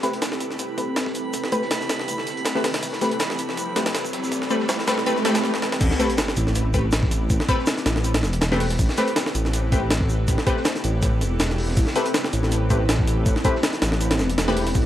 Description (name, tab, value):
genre	drum and bass, jungle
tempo	161 BPM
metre	4/4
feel	swing 54% on 16ths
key	A minor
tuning	A4 = 440 Hz
part	orchestra-hit-like synth stab	stabs	0.0-14.6 s	A3 to B4	-26 LUFS	left 1 dB	built-in reverb, cassette tape, dub echo
part	crunchy breakbeat drum kit	drums	0.0-14.8 s	hi-hat, shaker, snare drum	-34 LUFS	equal	high-pass filter on hats, high-pass filter on snare, high-pass filter on perc, high-pass filter on room
part	jungle sampler-style drum kit	drums	0.0-14.8 s	crash cymbal, hi-hat, kick drum, snare drum	-23 LUFS	equal	high-pass filter on kick, high-pass filter on hats, high-pass filter on snare, high-pass filter on cymbals, high-pass filter on room
part	riser, swell and sub drop	sound effects	2.6-7.3 s	none	-31 LUFS	right 2 dB	none
part	drifting glass-harmonics texture	texture	0.5-5.4 s	B5	-35 LUFS	right 3 dB	chorus, built-in reverb
part	dark detuned saw bass	bass	5.8-14.8 s	E1 to A1	-22 LUFS	equal	none
room	light reverb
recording	dry, gritty hardware recording, vinyl crackle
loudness	-20 LUFS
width	side -12 dB against mid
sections	0.0-5.8 A section; 5.8-14.9 B section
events	build-up 0.0-5.8; filter sweep on synth stab 0.0-5.8; riser 2.6-5.4; swell 5.1-5.8; drum fill 5.4-5.8; stop 5.4-5.8; drop 5.8-14.9; impact 5.8-7.3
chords	0.0 Am9